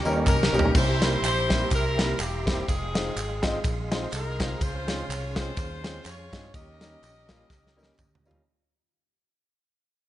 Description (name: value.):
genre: uptempo gospel.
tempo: 124 BPM.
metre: 4/4.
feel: swing 56% on 8ths.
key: unclear.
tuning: A4 = 440 Hz.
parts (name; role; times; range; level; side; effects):
edgy saxophone section; melody; 0.0-8.2 s; Bb3 to Eb5; -31 LUFS; left 1 dB; none.
tonewheel organ; sustained chords; 0.0-8.4 s; Db4 to Db6; -36 LUFS; right 3 dB; slow rotary speaker, chorus vibrato.
fingered electric bass; bass; 0.0-8.4 s; E1 to G2; -31 LUFS; equal; none.
warm grand piano; accompaniment; 0.1-8.4 s; C3 to Bb5; -31 LUFS; left 1 dB; none.
tambourine and handclaps; percussion; 0.1-8.4 s; none; -38 LUFS; right 2 dB; none.
modern studio drum kit; drums; 0.3-8.4 s; crash cymbal, kick drum, ride cymbal, snare drum, toms; -27 LUFS; equal; none.
room: light reverb.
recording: nothing above 10.5 kHz.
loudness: -23 LUFS.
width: side -13 dB against mid.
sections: 0.7-8.5 A section.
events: drum fill 0.0-0.7, 7.5-8.5; grand piano fill 0.0-0.7; fade-out 0.7-8.5.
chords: 0.0 Eb7; 0.7 C7; 2.7 Fm7; 4.6 Dbmaj7; 6.5 Eb7.